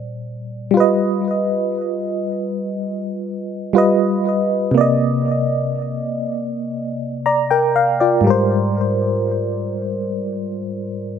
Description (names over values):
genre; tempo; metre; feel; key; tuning
R&B; 60 BPM; 4/4; straight; unclear; A4 = 440 Hz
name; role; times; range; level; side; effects
FM electric piano with auto-pan; solo; 0.0-11.2 s; Ab2 to Bb5; -17 LUFS; equal; ping-pong delay
room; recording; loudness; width
light reverb; none; -17 LUFS; side -8 dB against mid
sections
0.0-11.2 A section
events
none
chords
0.0 Bb69; 0.8 G7b13; 4.8 Cm9; 8.3 Abmaj9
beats
| 0.76 1.76 2.76 3.76 | 4.76 5.76 6.76 7.76 | 8.76 9.76 10.76